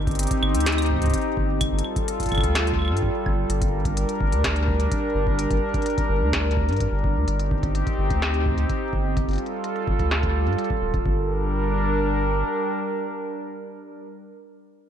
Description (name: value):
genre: IDM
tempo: 127 BPM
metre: 4/4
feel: straight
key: G minor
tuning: A4 = 441 Hz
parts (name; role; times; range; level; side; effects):
- warbly tape-like pad; sustained chords; 0.0-14.0 s; G3 to Bb4; -25 LUFS; equal; chorus, built-in reverb
- round analog bass; bass; 0.0-12.4 s; D1 to G2; -24 LUFS; equal; none
- electronic kick drum; drums; 0.1-11.2 s; none; -27 LUFS; equal; none
- industrial drum kit; drums; 0.1-11.0 s; claves, hi-hat, snare drum; -29 LUFS; equal; low-pass filter on hats, low-pass filter on perc, low-pass filter on snare, ping-pong delay
room: light reverb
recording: none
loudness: -21 LUFS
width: side -9 dB against mid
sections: 0.0-11.1 A section; 11.1-14.8 B section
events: none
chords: 0.0 Cm/G; 1.6 F/G; 3.5 Gm; 7.3 Cm/G; 9.2 F/G; 11.1 Gm